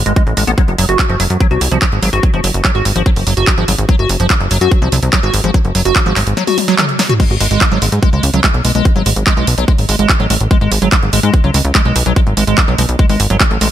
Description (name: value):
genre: psychedelic trance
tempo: 145 BPM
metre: 4/4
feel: straight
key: G# phrygian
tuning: A4 = 440 Hz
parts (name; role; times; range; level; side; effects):
- plucky analog bass; bass; 0.0-13.7 s; F#1 to G#2; -14 LUFS; equal; tube saturation
- liquid acid bass; riff; 0.1-13.7 s; E#3 to F#4; -17 LUFS; moving between left 4 dB and right 4 dB; chorus, auto-pan, sidechain pumping, dub echo
- techno drum kit; drums; 0.1-13.7 s; crash cymbal, handclaps, hi-hat, snare drum, toms; -16 LUFS; right 1 dB; none
- electronic kick drum; drums; 0.2-13.5 s; none; -12 LUFS; equal; none
room: digital ambience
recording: none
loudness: -10 LUFS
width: side -11 dB against mid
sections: 0.0-7.2 A section; 7.2-13.7 B section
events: drum fill 6.4-7.2; drop 7.2-13.7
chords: 0.0 N.C.; 0.6 F#sus2; 7.2 G#m